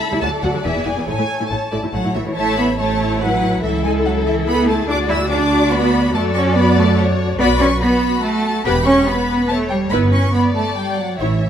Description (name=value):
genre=quick classical-period movement for string orchestra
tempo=143 BPM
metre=3/4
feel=straight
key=A major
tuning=A4 = 436 Hz
part: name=rich symphonic violin section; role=melody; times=0.0-11.5 s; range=F#4 to B5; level=-26 LUFS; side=left 4 dB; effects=none
part: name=warm symphonic violin section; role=second line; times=0.0-11.5 s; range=G#4 to E6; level=-23 LUFS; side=left 1 dB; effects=none
part: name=warm symphonic viola section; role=accompaniment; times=0.1-11.4 s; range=F#3 to D5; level=-21 LUFS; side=left 2 dB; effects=none
part: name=rich symphonic cello section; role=bass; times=0.1-11.5 s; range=C#2 to E4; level=-18 LUFS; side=right 2 dB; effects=none
part: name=rich studio double bass section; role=bass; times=0.2-11.5 s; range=E1 to F#2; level=-21 LUFS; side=right 2 dB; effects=none
room=moderate scoring stage reverb, RT60 1.9 s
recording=none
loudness=-14 LUFS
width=side -9 dB against mid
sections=0.0-2.4 A section; 2.4-11.5 A section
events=none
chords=0.2 D; 0.6 E7; 1.1 A; 3.6 A/C#; 4.9 D; 6.1 D/F#; 7.4 Bm; 8.6 Em; 9.9 Em/G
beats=0.22 0.64 | 1.07 1.50 1.94 | 2.37 2.79 3.22 | 3.63 4.05 4.47 | 4.89 5.31 5.72 | 6.14 6.56 6.98 | 7.39 7.81 8.23 | 8.65 9.07 9.49 | 9.91 10.34 10.76 | 11.20